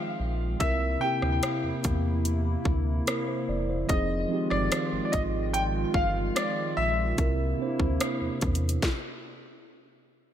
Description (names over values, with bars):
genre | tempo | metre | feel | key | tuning
contemporary R&B | 73 BPM | 4/4 | straight | unclear | A4 = 440 Hz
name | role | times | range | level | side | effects
clear concert grand piano | melody | 0.0-9.6 s | D5 to G5 | -30 LUFS | left 2 dB | analog chorus, ping-pong delay
mellow tine electric piano | accompaniment | 0.0-8.9 s | C3 to D5 | -32 LUFS | right 3 dB | medium stereo tremolo
hollow soft pad | sustained chords | 0.0-8.8 s | C3 to F4 | -34 LUFS | equal | chorus
sub bass with octave | bass | 0.2-8.8 s | E1 to E2 | -29 LUFS | equal | none
trap drum kit | drums | 0.6-9.0 s | hi-hat, kick drum, rim click, snare drum | -30 LUFS | equal | overdrive
room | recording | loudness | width
moderate plate reverb, RT60 2.6 s | dreamy mix soaked in reverb | -25 LUFS | side -10 dB against mid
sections
0.0-10.3 A section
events
stop 8.8-10.3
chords
0.0 Fm7; 0.6 C7; 3.9 Fm7; 7.2 C7